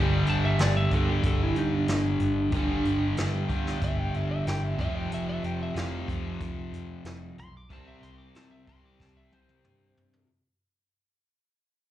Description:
hard rock; 93 BPM; 4/4; straight; A4 = 440 Hz
biting overdriven guitar; riff; 0.0-10.3 s; F2 to C4; -32 LUFS; left 6 dB; slapback echo
overdriven semi-hollow guitar; riff; 0.0-10.3 s; F2 to C4; -32 LUFS; right 6 dB
overdriven picked electric bass; bass; 0.0-10.2 s; F1 to C3; -31 LUFS; equal
lightly driven lead guitar; melody; 0.3-10.3 s; D4 to D6; -31 LUFS; equal; slapback echo
jazz brush drum kit; drums; 0.3-10.3 s; hi-hat, kick drum, snare drum, toms; -31 LUFS; equal
light reverb; live gig heard through the venue's PA, club reverb; -25 LUFS; side -13 dB against mid
0.0-10.3 A section
fade-out 0.0-10.3; lead electric guitar solo 0.0-10.3; drum fill 9.0-10.3
0.0 G5; 4.8 F5; 7.7 C5
0.59 1.24 1.88 | 2.53 3.17 3.82 4.46 | 5.11 5.76 6.40 7.05 | 7.70 8.35 9.00 9.64

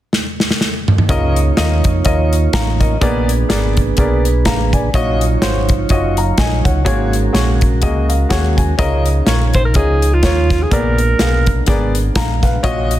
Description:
uptempo gospel; 125 BPM; 4/4; swing 56% on 8ths; Db major; A4 = 439 Hz
modern studio drum kit; drums; 0.1-13.0 s; hi-hat, kick drum, snare drum, toms; -17 LUFS; equal
warm concert grand piano; accompaniment; 1.1-13.0 s; Ab2 to Bb5; -19 LUFS; left 2 dB
mellow tonewheel organ; sustained chords; 1.1-8.8 s; Gb3 to Db5; -22 LUFS; right 6 dB; slow rotary speaker
fingered electric bass; bass; 1.1-13.0 s; Gb1 to F2; -16 LUFS; equal
mellow French horn section; sustained chords; 8.8-13.0 s; F3 to F5; -27 LUFS; right 2 dB; stereo widening
breathy alto saxophone; melody; 9.5-11.7 s; F4 to C5; -18 LUFS; right 2 dB
light reverb, studio reverb; dense, heavily limited modern master; -12 LUFS; side -13 dB against mid
0.0-1.1 A section; 1.1-8.8 B section; 8.8-13.0 C section
drum fill 0.1-1.1; grand piano fill 7.8-8.8
0.0 N.C.; 1.1 Db69; 3.0 Bb7b9; 4.9 Ebm9; 6.9 Ab9sus4; 8.8 Db69; 10.7 Bb7b9
0.13 0.61 | 1.09 1.57 2.05 2.53 | 3.01 3.50 3.98 4.46 | 4.94 5.42 5.90 6.38 | 6.86 7.34 7.83 8.31 | 8.79 9.27 9.75 10.23 | 10.71 11.20 11.68 12.16 | 12.64

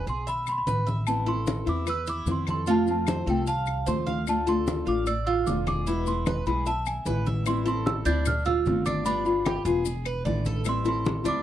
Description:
latin, Cuban son and guajira; 150 BPM; 4/4; straight; A minor; A4 = 440 Hz
small celesta; melody; 0.0-11.4 s; G5 to G6; -30 LUFS; right 1 dB
Cuban tres; arpeggios; 0.0-11.4 s; D4 to F5; -32 LUFS; right 6 dB
upright bass; bass; 0.1-11.4 s; E1 to F2; -30 LUFS; equal
maracas; percussion; 0.1-11.4 s; -44 LUFS; left 19 dB
congas; percussion; 0.3-11.4 s; -31 LUFS; left 1 dB
claves; percussion; 0.5-10.9 s; -38 LUFS; left 16 dB
nylon-string guitar; accompaniment; 1.1-11.4 s; B2 to F4; -28 LUFS; left 3 dB
small room ambience; dry, close 1970s-style studio recording; -24 LUFS; side -11 dB against mid
0.0-7.5 A section; 7.5-11.4 B section
0.0 E; 1.1 Amadd9; 2.7 F; 4.3 Dm; 5.9 E; 7.5 Am7; 8.3 Dm7; 9.1 G7; 9.9 E7; 10.7 Am7
0.28 0.68 | 1.07 1.48 1.87 2.27 | 2.67 3.07 3.47 3.87 | 4.27 4.67 5.07 5.47 | 5.87 6.27 6.67 7.07 | 7.46 7.86 8.26 8.66 | 9.06 9.46 9.86 10.26 | 10.65 11.05

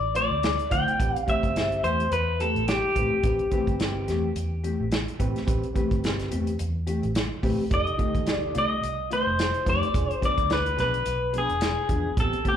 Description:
straight-eighth soul blues; 107 BPM; 4/4; swing 56% on 16ths; A minor; A4 = 439 Hz
electric guitar through a small old amp; melody; 0.0-12.6 s; G4 to G5; -25 LUFS; left 1 dB; plate reverb, slapback echo
vintage muted fingered electric bass; bass; 0.0-12.5 s; E1 to D3; -30 LUFS; equal
mellow electric guitar; stabs; 0.1-12.6 s; Eb3 to G#4; -32 LUFS; left 4 dB; ensemble chorus, tape echo
warm soul drum kit; drums; 0.2-12.6 s; hi-hat, kick drum, snare drum; -27 LUFS; right 1 dB
overdriven reed electric piano; accompaniment; 0.7-12.6 s; B3 to C5; -34 LUFS; right 4 dB; plate reverb, slapback echo
moderate club ambience, RT60 0.5 s; live gig heard through the venue's PA, club reverb; -23 LUFS; side -9 dB against mid
0.0-12.6 A section
0.0 Dm7; 1.0 Am7; 7.7 F7; 9.9 E7b9
0.44 | 1.00 1.56 2.12 2.68 | 3.24 3.80 4.36 4.92 | 5.48 6.04 6.59 7.15 | 7.71 8.27 8.83 9.39 | 9.94 10.50 11.06 11.62 | 12.18

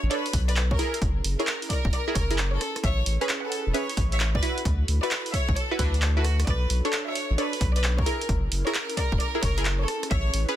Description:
UK garage, two-step garage; 132 BPM; 4/4; swing 66% on 16ths; B dorian; A4 = 440 Hz
bright studio violin section; melody; 0.0-10.3 s; D4 to F#5; -31 LUFS; equal; ping-pong delay
airy breathy pad; sustained chords; 0.0-10.6 s; C#4 to C#5; -40 LUFS; right 2 dB; chorus, sidechain pumping
punchy chord stab; stabs; 0.0-10.6 s; C#4 to C#5; -30 LUFS; right 1 dB; chorus, ping-pong delay
saturated sub bass; bass; 0.0-10.5 s; E1 to D2; -24 LUFS; equal
punchy analog drum machine; drums; 0.1-10.5 s; handclaps, hi-hat, rim click; -30 LUFS; right 1 dB
electronic kick drum; drums; 0.3-10.2 s; -27 LUFS; equal
little or no reverb; dense, heavily limited modern master; -23 LUFS; side -12 dB against mid
0.0-10.6 A section
0.0 Bm9; 0.8 F#7; 2.6 Amaj7; 4.4 D6; 6.5 Bm9; 8.1 F#7; 9.9 Amaj7
0.11 0.56 | 1.02 1.47 1.93 2.38 | 2.83 3.29 3.74 4.20 | 4.65 5.11 5.56 6.02 | 6.47 6.93 7.38 7.83 | 8.29 8.74 9.20 9.65 | 10.11

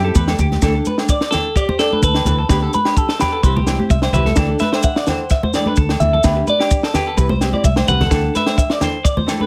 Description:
highlife guitar band; 128 BPM; 4/4; straight; D mixolydian; A4 = 441 Hz
clean electric guitar; melody; 0.0-9.1 s; G4 to F#5; -23 LUFS; equal; phaser
nylon-string guitar; accompaniment; 0.0-9.5 s; E3 to A4; -28 LUFS; equal
clean electric guitar; arpeggios; 0.0-9.5 s; G4 to E5; -25 LUFS; equal; lush chorus, slapback echo
fingered electric bass; bass; 0.0-8.3 s; C2 to F#2; -21 LUFS; equal
compact cocktail drum kit; drums; 0.2-9.4 s; kick drum, snare drum; -20 LUFS; equal
congas; percussion; 0.2-9.5 s; -25 LUFS; equal
maracas; percussion; 0.2-9.4 s; -32 LUFS; equal
agogo bells; percussion; 0.3-9.4 s; -31 LUFS; equal
light reverb; -16 LUFS; mono
0.6-9.5 A section
clean electric guitar solo 0.6-9.5; drum fill 7.7-8.1
0.0 C; 0.6 Dsus2; 2.5 G/D; 3.4 C; 4.4 Dsus2; 6.2 G/D; 7.2 C; 8.1 Dsus2
0.16 | 0.63 1.09 1.56 2.03 | 2.50 2.97 3.44 3.91 | 4.38 4.84 5.31 5.78 | 6.25 6.72 7.19 7.65 | 8.12 8.59 9.06

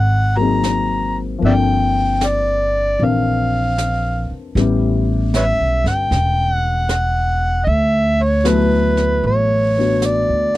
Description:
jazz ballad; 77 BPM; 4/4; swing 68% on 8ths; A4 = 439 Hz
overdriven harmonica; melody; 0.0-10.6 s; B4 to A#5; -18 LUFS; equal
upright bass; bass; 0.0-10.5 s; E1 to D2; -18 LUFS; right 1 dB
dark grand piano; accompaniment; 0.4-10.6 s; E3 to Bb4; -21 LUFS; left 6 dB
jazz brush drum kit; drums; 0.6-10.6 s; brushed snare drum, hi-hat, snare drum; -27 LUFS; right 1 dB
little or no reverb; dry, close 1970s-style studio recording; -14 LUFS; side -16 dB against mid
0.0-10.6 A section
0.0 G#9; 1.4 Gm11; 4.6 A13; 7.7 Dmaj13
0.63 | 1.42 2.21 2.99 3.77 | 4.56 5.34 6.11 6.89 | 7.67 8.46 9.24 10.02

